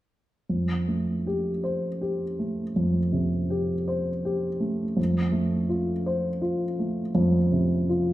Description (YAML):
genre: classical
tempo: 54 BPM (dotted quarters)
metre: 6/8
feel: rubato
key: F major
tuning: A4 = 440 Hz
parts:
  - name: dark baby grand piano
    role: accompaniment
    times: 0.5-8.1 s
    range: F2 to C5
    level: -23 LUFS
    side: equal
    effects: none
room: wet recital hall reverb, RT60 1.5 s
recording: none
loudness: -24 LUFS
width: side -15 dB against mid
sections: 0.5-8.1 A section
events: none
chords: 0.5 Fadd9; 5.0 F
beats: | 0.50 1.65 | 2.76 3.87 | 4.98 6.06 | 7.15